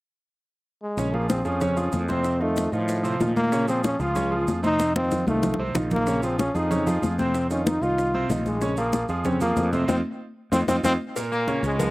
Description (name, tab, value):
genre	latin, salsa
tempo	188 BPM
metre	4/4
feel	straight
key	Bb minor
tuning	A4 = 439 Hz
part	clear trombone	melody	0.8-10.9 s	F3 to F4	-25 LUFS	left 1 dB	none
part	bright concert grand piano	accompaniment	1.0-11.9 s	Bb2 to F5	-28 LUFS	right 2 dB	slapback echo
part	fretless electric bass	bass	1.0-11.9 s	Bb1 to Bb2	-27 LUFS	equal	none
part	bongos and cowbell	percussion	1.0-11.9 s	none	-32 LUFS	left 4 dB	none
part	congas	percussion	1.0-11.9 s	none	-29 LUFS	left 1 dB	none
part	maracas	percussion	1.0-11.9 s	none	-42 LUFS	right 4 dB	none
part	brilliant trombone section	melody	11.3-11.9 s	Ab2 to Bb3	-25 LUFS	left 1 dB	none
room	little or no reverb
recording	recorded outdoors, with no room sound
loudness	-21 LUFS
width	side -19 dB against mid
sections	1.0-11.2 A section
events	drum fill 4.8-6.1, 10.7-11.2; band accent 9.9-11.2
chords	0.0 N.C.; 1.0 Bbm7; 2.2 F7; 3.5 Bbm7; 4.8 F7; 6.1 Bbm7; 7.3 F5; 8.6 Bbm7; 9.9 F5; 11.2 Bbm7